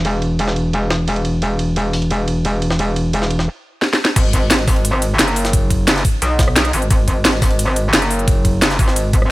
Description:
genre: dark technical drum and bass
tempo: 175 BPM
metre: 4/4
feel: straight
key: unclear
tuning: A4 = 440 Hz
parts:
  - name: metallic wobble bass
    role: bass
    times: 0.0-9.3 s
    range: E1 to B1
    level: -17 LUFS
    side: equal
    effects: chorus, overdrive
  - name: jungle sampler-style drum kit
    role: drums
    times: 0.0-9.2 s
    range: hi-hat, ride cymbal, snare drum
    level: -25 LUFS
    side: right 1 dB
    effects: high-pass filter on cymbals, low-pass filter on cymbals, high-pass filter on hats, low-pass filter on hats, high-pass filter on snare, low-pass filter on snare
  - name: drum and bass drum kit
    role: drums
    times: 3.8-9.3 s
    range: crash cymbal, hi-hat, rim click, snare drum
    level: -17 LUFS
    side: equal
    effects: none
  - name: electronic kick drum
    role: drums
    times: 4.2-9.2 s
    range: none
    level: -15 LUFS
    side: equal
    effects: none
room: little or no reverb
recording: none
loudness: -14 LUFS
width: side -18 dB against mid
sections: 0.0-4.2 A section; 4.2-9.3 B section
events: drum fill 3.8-4.2; drop 4.2-9.3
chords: none

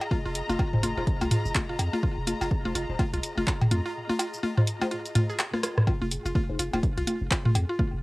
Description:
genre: minimal techno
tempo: 125 BPM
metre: 4/4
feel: swing 59% on 16ths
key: F minor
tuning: A4 = 440 Hz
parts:
  - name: electronic cowbell and toms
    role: percussion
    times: 0.0-7.9 s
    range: none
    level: -27 LUFS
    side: equal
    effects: none
  - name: pulsing gated texture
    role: texture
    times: 0.0-8.0 s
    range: Ab4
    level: -44 LUFS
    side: right 1 dB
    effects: chorus, built-in reverb, sidechain pumping
  - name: warm studio string section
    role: texture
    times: 0.0-5.9 s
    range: F4 to Bb5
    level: -37 LUFS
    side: left 2 dB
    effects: sidechain pumping
  - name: mallet-like synth pluck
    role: riff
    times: 0.1-7.8 s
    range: F4 to Ab4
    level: -33 LUFS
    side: equal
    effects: chorus, sidechain pumping, tape echo
  - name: electronic kick drum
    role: drums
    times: 0.1-7.9 s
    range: none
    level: -28 LUFS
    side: equal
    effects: none
  - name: punchy sub bass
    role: bass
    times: 0.3-8.0 s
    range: Eb1 to F2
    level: -31 LUFS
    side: equal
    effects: sidechain pumping
  - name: punchy analog drum machine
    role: drums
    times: 0.4-7.7 s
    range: handclaps, hi-hat, rim click, shaker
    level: -30 LUFS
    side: equal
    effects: none
  - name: filtered dub chord stab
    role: stabs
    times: 0.7-6.8 s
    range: Eb4 to C5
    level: -40 LUFS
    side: left 5 dB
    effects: phaser, lush chorus, analog delay
room: little or no reverb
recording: home recording on cassette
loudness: -24 LUFS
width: side -22 dB against mid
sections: 0.0-5.9 A section; 5.9-8.0 B section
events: kick drops out 4.0-5.9; drum fill 5.5-5.9; drop 5.9-8.0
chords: 0.0 Fm7; 5.9 Fm

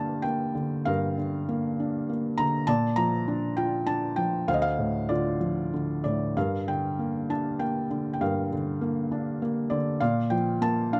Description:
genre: classical, lyrical solo piano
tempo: 98 BPM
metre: 3/4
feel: rubato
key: G minor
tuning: A4 = 440 Hz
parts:
  - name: felt-muted upright piano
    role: solo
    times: 0.0-11.0 s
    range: D2 to Bb5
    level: -28 LUFS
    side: equal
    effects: none
room: light reverb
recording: close, detailed microphones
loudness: -28 LUFS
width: mono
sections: 0.0-11.0 A section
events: none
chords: 0.0 Gm7; 2.7 Bb; 4.5 Dm7; 6.4 Gm7; 10.0 Bb

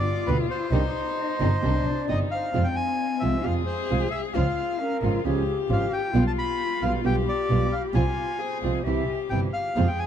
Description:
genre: tango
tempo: 133 BPM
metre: 4/4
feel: rubato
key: F harmonic minor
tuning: A4 = 439 Hz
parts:
  - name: bandoneon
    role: melody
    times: 0.0-10.0 s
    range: B4 to B5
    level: -30 LUFS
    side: equal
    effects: none
  - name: warm cello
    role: second line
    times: 0.0-10.1 s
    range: C4 to Ab4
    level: -29 LUFS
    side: left 9 dB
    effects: none
  - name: nylon-string guitar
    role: accompaniment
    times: 0.3-9.9 s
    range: B2 to G4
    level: -30 LUFS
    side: right 5 dB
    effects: none
  - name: warm studio string section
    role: stabs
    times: 0.3-10.0 s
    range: G3 to G4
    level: -35 LUFS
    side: right 1 dB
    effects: none
  - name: dark double bass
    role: bass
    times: 0.3-10.0 s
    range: G1 to F2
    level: -26 LUFS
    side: right 1 dB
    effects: none
  - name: mellow silver concert flute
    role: second line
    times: 1.2-5.6, 8.4-9.2 s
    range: Ab4 to E5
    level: -37 LUFS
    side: right 4 dB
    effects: none
room: light reverb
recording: dark, warm production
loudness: -22 LUFS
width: side -9 dB against mid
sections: 0.0-2.6 A section; 2.6-10.1 B section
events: none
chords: 0.0 G; 0.7 Cmadd9; 2.6 Fm; 4.4 Db; 6.1 G7/B; 7.9 Fm/C; 8.8 C

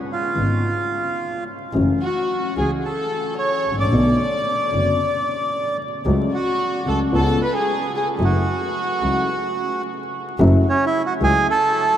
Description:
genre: tango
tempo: 111 BPM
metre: 4/4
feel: rubato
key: F# minor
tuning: A4 = 436 Hz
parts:
  - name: bandoneon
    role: melody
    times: 0.1-12.0 s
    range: C#4 to D6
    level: -22 LUFS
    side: right 3 dB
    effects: none
  - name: dark concert grand piano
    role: accompaniment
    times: 0.4-11.4 s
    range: F#1 to F#4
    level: -23 LUFS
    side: left 2 dB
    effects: none
  - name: clear double bass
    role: bass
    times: 0.4-11.4 s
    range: F#1 to C#2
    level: -22 LUFS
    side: right 1 dB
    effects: none
  - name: warm studio violin section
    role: second line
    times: 2.0-9.8 s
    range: F#4 to D5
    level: -25 LUFS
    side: left 3 dB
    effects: none
room: wet huge ambient reverb, RT60 8.1 s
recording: in a vast, echoing space, vinyl crackle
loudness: -18 LUFS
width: side -10 dB against mid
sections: 0.0-10.4 A section; 10.4-12.0 B section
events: none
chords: 0.0 C#7; 1.7 F#m7; 3.9 Bm7; 6.1 F#m/C#; 7.1 C#7; 8.2 F#m7

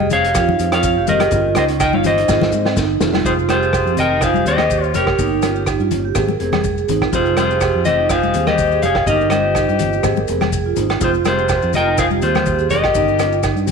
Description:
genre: highlife guitar band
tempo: 124 BPM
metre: 4/4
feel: swing 54% on 16ths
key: F minor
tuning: A4 = 437 Hz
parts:
  - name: clean electric guitar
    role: melody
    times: 0.0-13.4 s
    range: Ab4 to G5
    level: -18 LUFS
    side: left 2 dB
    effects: none
  - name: vibraphone with medium mallets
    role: arpeggios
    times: 0.0-13.6 s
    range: C4 to Bb4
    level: -21 LUFS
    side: right 12 dB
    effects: tape echo
  - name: fingered electric bass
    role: bass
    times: 0.0-13.7 s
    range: F1 to Ab2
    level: -22 LUFS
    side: left 1 dB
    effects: none
  - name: congas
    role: percussion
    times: 0.0-13.7 s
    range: none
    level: -24 LUFS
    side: left 13 dB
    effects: none
  - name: nylon-string guitar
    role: accompaniment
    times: 0.1-13.7 s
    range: Eb3 to Ab4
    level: -28 LUFS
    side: left 12 dB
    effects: none
  - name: vintage drum kit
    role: drums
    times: 0.1-13.7 s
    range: hi-hat, kick drum, rim click, snare drum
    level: -24 LUFS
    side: left 1 dB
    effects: none
  - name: maracas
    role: percussion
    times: 0.1-13.7 s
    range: none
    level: -33 LUFS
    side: left 16 dB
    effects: none
  - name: agogo bells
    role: percussion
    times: 0.4-13.6 s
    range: none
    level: -27 LUFS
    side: right 12 dB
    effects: none
  - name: bright trumpet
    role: second line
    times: 3.3-13.4 s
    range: F4 to Bb4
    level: -25 LUFS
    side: left 10 dB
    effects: none
room: moderate echo chamber reverb, RT60 1.4 s, studio reverb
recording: 1960s-style stereo with parts hard left and right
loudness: -14 LUFS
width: side -5 dB against mid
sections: 0.0-3.3 A section; 3.3-13.7 B section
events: drum fill 2.3-3.3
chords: 0.0 Fmadd9; 1.3 Eb7/G; 2.3 Fmadd9; 5.2 Eb7/G; 6.2 Abadd9; 7.1 Fmadd9; 9.1 Eb7/G; 10.0 Abadd9; 11.0 Fmadd9; 12.9 Eb7/G

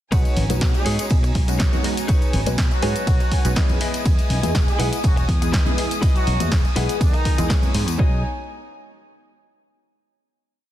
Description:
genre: filtered disco house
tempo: 122 BPM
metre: 4/4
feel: swing 53% on 16ths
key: B major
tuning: A4 = 440 Hz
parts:
  - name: funky polysynth comp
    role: accompaniment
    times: 0.1-8.2 s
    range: E3 to D#5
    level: -28 LUFS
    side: equal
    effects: chorus, phaser, sidechain pumping
  - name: warm studio violin section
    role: sustained chords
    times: 0.1-8.2 s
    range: D#4 to D#6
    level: -32 LUFS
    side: left 1 dB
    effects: vintage 12-bit sampler grit, sidechain pumping
  - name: direct-recorded clean electric guitar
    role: riff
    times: 0.1-8.2 s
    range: D#4 to G#5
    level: -32 LUFS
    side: left 3 dB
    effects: sidechain pumping
  - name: fingered electric bass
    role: bass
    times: 0.1-8.2 s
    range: E1 to B2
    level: -24 LUFS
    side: equal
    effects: sidechain pumping
  - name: electronic kick drum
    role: drums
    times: 0.1-8.1 s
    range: none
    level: -19 LUFS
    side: equal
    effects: none
  - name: punchy analog drum machine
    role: drums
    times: 0.1-8.0 s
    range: hi-hat, ride cymbal, snare drum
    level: -28 LUFS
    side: equal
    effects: sidechain pumping on hats, sidechain pumping on cymbals
  - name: tambourine and congas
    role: percussion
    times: 0.1-8.0 s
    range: none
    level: -32 LUFS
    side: left 4 dB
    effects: sidechain pumping on perc
  - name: warm horn section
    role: melody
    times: 0.7-7.5 s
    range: D#3 to G#4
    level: -30 LUFS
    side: right 1 dB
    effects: sidechain pumping
room: little or no reverb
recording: dense, heavily limited modern master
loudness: -17 LUFS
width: side -13 dB against mid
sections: 0.1-8.0 drop; 8.0-10.0 final chord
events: drop 0.1-8.0; clean electric guitar fill 2.6-4.1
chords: 0.1 B69; 3.8 Emaj7; 8.0 B69

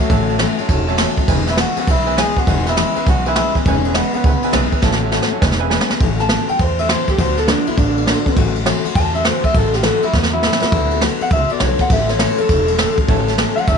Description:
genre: rockabilly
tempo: 204 BPM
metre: 4/4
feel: swing 64% on 8ths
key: A major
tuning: A4 = 437 Hz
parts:
  - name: electric guitar through a small old amp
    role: melody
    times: 0.0-13.8 s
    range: A3 to A5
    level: -19 LUFS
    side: equal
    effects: tape echo
  - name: picked steel-string acoustic guitar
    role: accompaniment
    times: 0.0-13.8 s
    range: A2 to A4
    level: -22 LUFS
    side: left 14 dB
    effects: none
  - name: warm upright piano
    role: accompaniment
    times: 0.0-6.0, 13.1-13.8 s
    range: B4 to A5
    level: -25 LUFS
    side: right 14 dB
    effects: none
  - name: upright bass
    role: bass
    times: 0.0-13.8 s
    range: E1 to E2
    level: -20 LUFS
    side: right 1 dB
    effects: none
  - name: jazz brush drum kit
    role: drums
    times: 0.1-13.8 s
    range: kick drum, ride cymbal, snare drum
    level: -17 LUFS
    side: right 1 dB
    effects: none
room: small room reverb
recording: 1960s-style stereo with parts hard left and right, nothing above 10.8 kHz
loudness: -14 LUFS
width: side -6 dB against mid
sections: 0.0-6.0 A section; 6.0-13.8 B section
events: drum fill 4.8-6.0, 10.1-10.7; clean electric guitar solo 6.0-13.8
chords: 0.0 A6; 1.3 E6; 4.8 A6; 5.4 E6; 6.0 A6; 7.2 D6; 8.4 A6; 10.7 D6; 11.9 A6

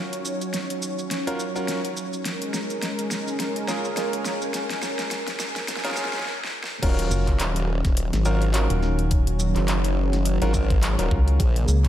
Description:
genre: glitch hop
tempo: 105 BPM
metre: 4/4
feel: swing 57% on 16ths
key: Eb minor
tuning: A4 = 440 Hz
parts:
  - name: warm analog pad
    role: sustained chords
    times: 0.0-11.9 s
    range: Db3 to Db5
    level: -29 LUFS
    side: equal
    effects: chorus, sidechain pumping
  - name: bright concert grand piano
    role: stabs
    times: 0.0-11.4 s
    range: Db4 to Bb4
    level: -31 LUFS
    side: right 1 dB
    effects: vintage 12-bit sampler grit, sidechain pumping, diffuse ambient delay
  - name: deep dark ambient pad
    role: texture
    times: 0.0-11.9 s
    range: Db4 to Ab5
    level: -36 LUFS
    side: right 2 dB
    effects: chorus, built-in reverb, sidechain pumping
  - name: dubstep drum kit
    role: drums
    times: 0.1-11.9 s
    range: crash cymbal, handclaps, hi-hat, shaker, snare drum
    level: -30 LUFS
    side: equal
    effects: overdrive
  - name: formant-sweep wobble bass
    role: bass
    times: 6.8-11.7 s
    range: Eb1 to Bb1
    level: -23 LUFS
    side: equal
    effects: chorus
  - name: electronic kick drum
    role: drums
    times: 6.8-11.9 s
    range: none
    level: -22 LUFS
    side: equal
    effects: overdrive
  - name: rubbery square bass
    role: bass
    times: 7.1-11.9 s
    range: Eb1 to Db2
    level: -21 LUFS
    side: equal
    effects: none
room: light reverb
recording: high-pass filter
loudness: -22 LUFS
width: side -12 dB against mid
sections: 0.0-6.8 A section; 6.8-11.9 B section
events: build-up 0.0-6.8; drum fill 0.0-6.3, 6.3-6.8; filter sweep 0.0-6.8; stop 6.3-6.8; drop 6.8-11.9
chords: 0.0 Ebm7; 2.3 Bbm7; 6.8 Ebm7

